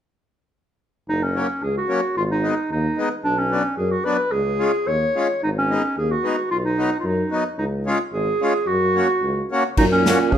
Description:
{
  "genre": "alpine folk, alpine dance band",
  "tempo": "110 BPM",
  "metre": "2/4",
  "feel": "rubato",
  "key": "F# major",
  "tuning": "A4 = 440 Hz",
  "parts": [
    { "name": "warm clarinet", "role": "melody", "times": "1.1-10.4 s", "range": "C#4 to C#5", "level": "-21 LUFS", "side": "right 1 dB", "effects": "none" },
    { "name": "warm tuba", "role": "bass", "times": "1.1-10.4 s", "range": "F#1 to F#2", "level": "-25 LUFS", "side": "left 1 dB", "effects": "none" },
    { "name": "accordion", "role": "accompaniment", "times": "1.4-10.2 s", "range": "F#3 to F#4", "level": "-24 LUFS", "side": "left 2 dB", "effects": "none" },
    { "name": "warm euphonium", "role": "second line", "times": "9.8-10.4 s", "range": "A#2 to C#3", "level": "-21 LUFS", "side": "right 8 dB", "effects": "none" },
    { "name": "unplugged drum kit", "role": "drums", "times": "9.8-10.4 s", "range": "crash cymbal, hi-hat, kick drum, snare drum", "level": "-21 LUFS", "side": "equal", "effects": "none" }
  ],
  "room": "moderate recital hall reverb, RT60 1.4 s",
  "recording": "minimal, uncompressed stereo recording",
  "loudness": "-19 LUFS",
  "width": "side -9 dB against mid",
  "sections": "1.1-9.8 A section",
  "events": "none",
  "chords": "1.1 F#; 2.2 G#m; 3.2 Bm; 4.3 C#; 5.4 G#m; 6.5 B; 7.6 C#; 8.7 F#",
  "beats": "| 1.06 1.61 | 2.15 2.69 | 3.23 3.77 | 4.32 4.87 | 5.43 5.98 | 6.52 7.05 | 7.59 8.13 | 8.68 9.23 | 9.78 10.33"
}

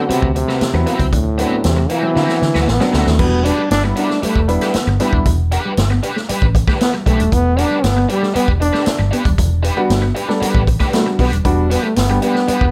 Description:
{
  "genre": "funk",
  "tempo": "116 BPM",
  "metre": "4/4",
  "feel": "straight",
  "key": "E minor",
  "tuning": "A4 = 441 Hz",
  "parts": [
    { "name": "mellow trombone", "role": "melody", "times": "0.0-12.7 s", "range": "A2 to D4", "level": "-21 LUFS", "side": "equal", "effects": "plate reverb, tape echo" },
    { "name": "overdriven electric guitar", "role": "accompaniment", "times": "0.0-12.6 s", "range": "C4 to B4", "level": "-25 LUFS", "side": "equal", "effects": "wah" },
    { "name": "mellow electric guitar", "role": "riff", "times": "0.0-12.6 s", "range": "E3 to D4", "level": "-30 LUFS", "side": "equal", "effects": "none" },
    { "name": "warm upright piano", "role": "stabs", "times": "0.0-5.3, 9.8-12.4 s", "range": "F#3 to A4", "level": "-23 LUFS", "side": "equal", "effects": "none" },
    { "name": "vintage muted fingered electric bass", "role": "bass", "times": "0.1-12.7 s", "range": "D#1 to D3", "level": "-20 LUFS", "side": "equal", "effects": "none" },
    { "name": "swinging big-band drum kit", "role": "drums", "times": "0.1-12.7 s", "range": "crash cymbal, hi-hat, kick drum, snare drum", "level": "-22 LUFS", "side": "equal", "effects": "none" }
  ],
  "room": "light reverb",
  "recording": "none",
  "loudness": "-16 LUFS",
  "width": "mono",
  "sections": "0.0-3.2 A section; 3.2-12.7 B section",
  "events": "drum fill 2.2-3.2",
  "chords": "0.0 D13; 3.2 Em7",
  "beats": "0.10 0.61 | 1.13 1.64 2.16 2.68 | 3.19 3.71 4.22 4.74 | 5.26 5.77 6.29 6.80 | 7.32 7.84 8.35 8.87 | 9.38 9.90 10.42 10.93 | 11.45 11.96 12.48"
}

